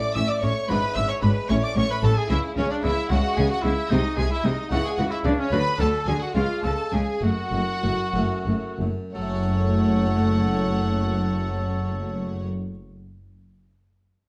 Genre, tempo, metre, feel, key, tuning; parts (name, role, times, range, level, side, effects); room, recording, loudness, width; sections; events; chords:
classical, baroque-style concerto movement with solo episodes; 59-75 BPM (dotted quarters); 6/8; straight; F# minor; A4 = 439 Hz
rich studio violin section; melody; 0.0-12.4 s; C#5 to E6; -35 LUFS; equal
warm oboe; melody; 0.0-12.5 s; C#4 to E5; -33 LUFS; equal
rich studio violin section; second line; 0.0-12.5 s; C#4 to E5; -33 LUFS; equal
harpsichord; accompaniment; 0.0-12.7 s; F#2 to C#5; -35 LUFS; equal
rich studio viola section; accompaniment; 0.2-12.5 s; E3 to D4; -32 LUFS; equal
clear studio cello section; bass; 0.2-12.4 s; F#2 to D3; -30 LUFS; equal
rich chamber double bass section; bass; 0.2-12.4 s; F#1 to D2; -29 LUFS; equal
wet stone room reverb, RT60 0.9 s; dark, warm production; -24 LUFS; mono
0.0-9.1 A section; 9.1-13.2 B section
slowing down 4.7-9.1
0.0 A; 0.7 E7/G#; 1.5 A; 2.3 C#m; 3.9 G#7/B#; 4.7 C#m; 5.5 Bm/D; 6.4 C#5; 7.2 F#m